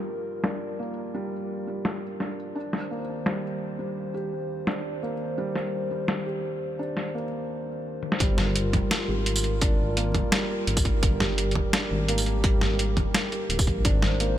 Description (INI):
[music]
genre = half-time drum and bass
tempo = 170 BPM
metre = 4/4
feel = half-time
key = G phrygian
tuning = A4 = 440 Hz
[part]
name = dark analog pad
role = sustained chords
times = 0.0-14.4 s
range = Eb3 to C5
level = -33 LUFS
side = left 1 dB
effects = chorus, sidechain pumping
[part]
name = felt-muted upright piano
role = arpeggios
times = 0.0-14.4 s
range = G3 to G4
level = -32 LUFS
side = right 2 dB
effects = low-pass filter, dub echo
[part]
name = boom bap sampler-style drum kit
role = drums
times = 0.4-14.3 s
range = hi-hat, snare drum, tambourine, toms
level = -27 LUFS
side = equal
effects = overdrive, low-pass filter on hats, low-pass filter on toms, low-pass filter on snare, low-pass filter on perc, low-pass filter on room
[part]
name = dark detuned saw bass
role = bass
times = 8.2-14.4 s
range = D1 to Bb1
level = -26 LUFS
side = equal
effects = none
[part]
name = electronic kick drum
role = drums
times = 8.2-13.9 s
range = none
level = -26 LUFS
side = equal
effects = none
[sound]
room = light reverb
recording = none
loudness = -24 LUFS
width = side -12 dB against mid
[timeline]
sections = 0.0-8.2 A section; 8.2-14.4 B section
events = drum fill 8.0; drop 8.2-14.4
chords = 0.0 Gm7; 2.6 Eb6; 8.2 Gm7; 13.8 Ab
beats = 0.09 0.44 0.79 | 1.14 1.50 1.85 2.20 | 2.56 2.91 3.26 3.61 | 3.97 4.32 4.67 5.03 | 5.38 5.73 6.08 6.44 | 6.79 7.14 7.50 7.85 | 8.20 8.55 8.91 9.26 | 9.61 9.97 10.32 10.67 | 11.03 11.38 11.73 12.09 | 12.44 12.79 13.14 13.50 | 13.85 14.20